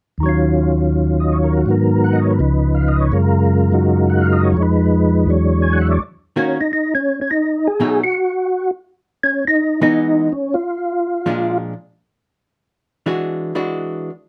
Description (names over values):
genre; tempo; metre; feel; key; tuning
jazz; 167 BPM; 4/4; swing 64% on 8ths; Eb minor; A4 = 439 Hz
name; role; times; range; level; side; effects
percussive tonewheel organ; melody; 0.2-11.6 s; Db2 to G#5; -17 LUFS; equal; slow rotary speaker, chorus vibrato
archtop guitar, miked and amplified; accompaniment; 6.4-14.1 s; Bb2 to Gb4; -22 LUFS; equal; none
room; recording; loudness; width
light reverb; none; -17 LUFS; mono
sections
0.2-6.0 A section; 6.0-14.3 B section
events
none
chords
0.2 Ebm7; 1.7 Abm7; 2.4 Db7; 3.1 Gbmaj7; 4.6 Fm7b5; 5.3 E13; 6.0 Ebm7; 7.4 B7; 8.9 Emaj7; 10.3 N.C.; 11.0 Bb7; 11.7 E9